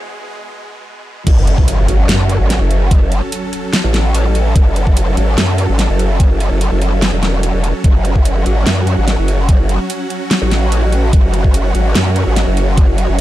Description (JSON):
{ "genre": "heavy wobble dubstep", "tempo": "146 BPM", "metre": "4/4", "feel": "half-time", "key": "F# minor", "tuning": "A4 = 441 Hz", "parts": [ { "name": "supersaw chords", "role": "sustained chords", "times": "0.0-13.2 s", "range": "E2 to A4", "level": "-21 LUFS", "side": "right 1 dB", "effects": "sidechain pumping" }, { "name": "growl bass", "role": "bass", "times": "1.3-13.2 s", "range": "E1 to F#2", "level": "-14 LUFS", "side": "equal", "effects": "chorus, overdrive" }, { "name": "dubstep drum kit", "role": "drums", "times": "1.3-13.2 s", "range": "crash cymbal, hi-hat, snare drum", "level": "-19 LUFS", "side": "equal", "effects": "high-pass filter on hats, high-pass filter on cymbals, high-pass filter on snare" }, { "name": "electronic kick drum", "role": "drums", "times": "1.3-12.9 s", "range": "none", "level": "-10 LUFS", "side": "equal", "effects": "overdrive" }, { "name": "impact", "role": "sound effects", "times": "1.3-2.9 s", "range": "none", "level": "-18 LUFS", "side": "equal", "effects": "none" } ], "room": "little or no reverb", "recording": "dark, warm production, high-pass filter", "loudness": "-11 LUFS", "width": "side -14 dB against mid", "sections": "0.0-1.3 A section; 1.3-13.2 B section", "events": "break 0.0-1.3; build-up 0.0-1.3; drop 1.3-13.2; impact 1.3-2.9", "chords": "0.0 E; 1.3 F#m", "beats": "0.04 0.45 0.86 | 1.27 1.68 2.09 2.50 | 2.91 3.32 3.73 4.14 | 4.56 4.97 5.38 5.79 | 6.20 6.61 7.02 7.43 | 7.84 8.25 8.66 9.08 | 9.49 9.90 10.31 10.72 | 11.13 11.54 11.95 12.36 | 12.78 13.19" }